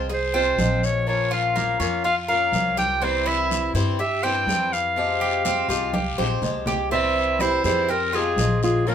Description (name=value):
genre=latin, Cuban son and guajira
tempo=123 BPM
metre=4/4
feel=straight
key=F harmonic minor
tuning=A4 = 440 Hz
part: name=bright clarinet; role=melody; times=0.0-8.9 s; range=Ab4 to G5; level=-22 LUFS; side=right 1 dB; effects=none
part: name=picked swing-style acoustic guitar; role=accompaniment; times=0.0-8.9 s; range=C3 to C5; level=-28 LUFS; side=left 5 dB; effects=none
part: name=Cuban tres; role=arpeggios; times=0.0-8.6 s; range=Bb3 to C5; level=-27 LUFS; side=right 2 dB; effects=none
part: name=upright bass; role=bass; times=0.0-8.9 s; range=Bb1 to G2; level=-28 LUFS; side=left 1 dB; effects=none
part: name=congas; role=percussion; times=0.1-8.9 s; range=none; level=-30 LUFS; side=right 1 dB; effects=none
part: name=guiro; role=percussion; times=0.1-8.9 s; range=none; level=-35 LUFS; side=left 5 dB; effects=none
part: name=nylon-string guitar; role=second line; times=6.9-8.9 s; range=F4 to C5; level=-27 LUFS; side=right 1 dB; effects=none
room=moderate studio ambience, RT60 0.5 s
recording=minimal, uncompressed stereo recording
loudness=-20 LUFS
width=side -8 dB against mid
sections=0.0-6.9 A section; 6.9-8.9 B section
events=drum fill 5.9-6.9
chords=0.0 Fm; 1.1 Bbm; 3.0 C; 5.0 Fmadd9; 6.9 C; 7.9 Fmadd9